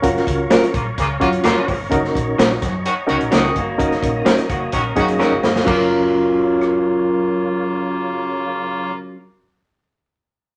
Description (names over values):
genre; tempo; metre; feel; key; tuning
uptempo 1960s-style soul; 128 BPM; 4/4; straight; F# major; A4 = 440 Hz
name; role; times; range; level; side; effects
barky reed electric piano; accompaniment; 0.0-8.9 s; F#2 to C#5; -24 LUFS; equal; overdrive, fast tremolo
tonewheel organ; sustained chords; 0.0-8.9 s; F#3 to D#6; -32 LUFS; equal; slow rotary speaker, chorus vibrato
vintage muted fingered electric bass; bass; 0.0-8.9 s; F#1 to F#2; -30 LUFS; equal; none
swinging big-band drum kit; drums; 0.0-6.7 s; crash cymbal, hi-hat, kick drum, rim click, snare drum; -22 LUFS; equal; none
electric guitar through a small old amp; stabs; 0.5-9.2 s; F#3 to A#4; -21 LUFS; equal; none
clear horn section; second line; 0.7-8.9 s; C#3 to F#4; -26 LUFS; equal; none
electric guitar through a small old amp; riff; 3.1-5.6 s; A#3 to A#4; -27 LUFS; equal; none
room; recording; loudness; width
wet studio reverb, RT60 0.7 s; none; -18 LUFS; mono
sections
0.0-5.7 A section; 5.7-9.4 B section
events
drum fill 5.2-5.7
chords
0.0 F#maj7; 1.9 D#m7/F#; 5.7 F#maj7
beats
| 0.04 0.51 0.97 1.44 | 1.91 2.38 2.85 3.32 | 3.79 4.26 4.73 5.20 | 5.67 6.13 6.60 7.07 | 7.54 8.01 8.48 8.95